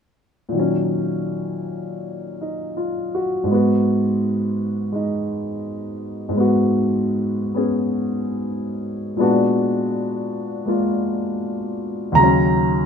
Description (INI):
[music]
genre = solo jazz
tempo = 82 BPM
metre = 4/4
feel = swing 67% on 8ths, uneven beats, rubato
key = Eb minor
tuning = A4 = 439 Hz
[part]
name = warm concert grand piano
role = solo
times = 0.5-12.9 s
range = Eb2 to Bb5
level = -19 LUFS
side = equal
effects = none
[sound]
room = moderate studio reverb, RT60 0.8 s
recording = minimal, uncompressed stereo recording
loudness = -19 LUFS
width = side -6 dB against mid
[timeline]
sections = 0.5-12.2 A section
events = none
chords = 0.5 Ebm7/Bb; 3.5 Abm7; 9.2 Bb7b9b13; 12.2 Ebm7